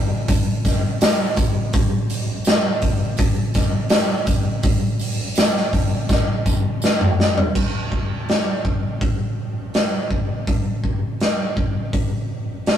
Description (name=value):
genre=rock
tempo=82 BPM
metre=4/4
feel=straight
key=none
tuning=none
part: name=raw garage drum kit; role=drums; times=0.3-12.8 s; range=crash cymbal, hi-hat, kick drum, snare drum, toms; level=-18 LUFS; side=equal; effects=none
part: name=tambourine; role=percussion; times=0.3-7.0 s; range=none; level=-34 LUFS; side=right 2 dB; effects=none
room=light reverb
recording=rough rehearsal-room recording, tube saturation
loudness=-18 LUFS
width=side -10 dB against mid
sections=0.0-7.5 A section; 7.5-12.8 B section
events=drum fill 6.1-7.5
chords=none